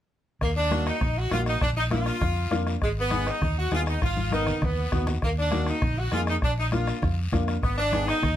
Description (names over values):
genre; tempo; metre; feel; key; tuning
latin, cumbia; 200 BPM; 4/4; straight; Eb harmonic minor; A4 = 440 Hz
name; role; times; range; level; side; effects
clear saxophone section; melody; 0.4-8.4 s; Ab3 to Gb4; -28 LUFS; equal; none
fingered electric bass; bass; 0.4-8.4 s; Ab1 to F2; -28 LUFS; equal; none
bombo; percussion; 0.4-8.4 s; none; -30 LUFS; equal; none
congas; percussion; 0.4-8.4 s; none; -33 LUFS; left 1 dB; none
guiro; percussion; 0.4-8.4 s; none; -42 LUFS; left 5 dB; none
bright upright piano; accompaniment; 0.7-8.1 s; Bb3 to Bb4; -30 LUFS; left 2 dB; none
room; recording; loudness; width
light reverb; none; -23 LUFS; side -11 dB against mid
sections
0.4-8.4 A section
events
drum fill 4.0-5.2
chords
0.4 Ebm; 1.6 Bb; 2.8 Abm; 5.2 Ebm; 6.4 Bb; 7.6 Abm